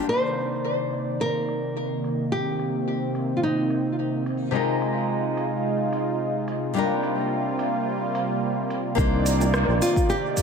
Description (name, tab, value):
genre	sunset chillout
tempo	108 BPM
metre	4/4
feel	swing 54% on 16ths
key	C minor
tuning	A4 = 439 Hz
part	nylon-string guitar	accompaniment	0.0-10.4 s	C3 to D5	-28 LUFS	moving between left 9 dB and right 2 dB	auto-pan, low-pass filter, tape echo
part	lush unison pad	sustained chords	0.0-10.4 s	C3 to D5	-26 LUFS	right 2 dB	chorus
part	nylon-string guitar	melody	0.1-4.2, 9.8-10.4 s	Eb4 to C5	-26 LUFS	equal	tape echo
part	smooth R&B drum kit	drums	0.4-10.4 s	hi-hat, rim click, shaker	-32 LUFS	equal	low-pass filter on perc, low-pass filter on hats, low-pass filter on snare, low-pass filter on room, dub echo
part	sustaining fretless electric bass	bass	9.0-9.8 s	Bb1 to C2	-22 LUFS	equal	analog chorus
part	electronic kick drum	drums	9.0-10.4 s	none	-24 LUFS	equal	overdrive
part	bongos	percussion	9.4-9.5 s	none	-37 LUFS	right 2 dB	none
room	wet spring reverb, RT60 2.7 s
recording	echo-heavy mix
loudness	-22 LUFS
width	side -6 dB against mid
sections	0.1-9.0 A section; 9.0-10.4 B section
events	filter sweep on nylon-string guitar 0.1-9.0; filter sweep on analog synth pad 0.1-9.0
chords	0.1 Cm9; 4.5 Bb7sus4/C; 6.8 Gm7/C; 9.0 Cm9